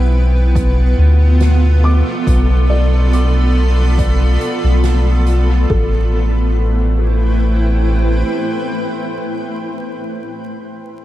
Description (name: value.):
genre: ambient dub.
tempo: 70 BPM.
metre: 4/4.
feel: swing 53% on 16ths.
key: A minor.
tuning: A4 = 444 Hz.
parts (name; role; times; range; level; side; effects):
granular cloud pad; sustained chords; 0.0-9.7 s; A3 to B5; -19 LUFS; right 1 dB; built-in reverb.
felt-muted upright piano; arpeggios; 0.0-11.0 s; B3 to D6; -28 LUFS; left 2 dB; analog delay.
soft dub sub bass; bass; 0.0-8.2 s; A1 to D2; -12 LUFS; equal; tube saturation.
electronic kick drum; drums; 0.6-5.9 s; none; -19 LUFS; equal; overdrive.
soft-mallet drum kit; drums; 0.6-5.5 s; hi-hat, snare drum; -29 LUFS; right 2 dB; dub echo.
room: light reverb, small room reverb.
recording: vinyl crackle.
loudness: -12 LUFS.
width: side -14 dB against mid.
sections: 0.0-5.7 A section; 5.7-9.1 B section.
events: none.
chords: 0.0 Bm7b5; 5.7 Am7.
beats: 0.56 1.41 | 2.27 3.13 3.98 4.84 | 5.70 6.55 7.41 8.27.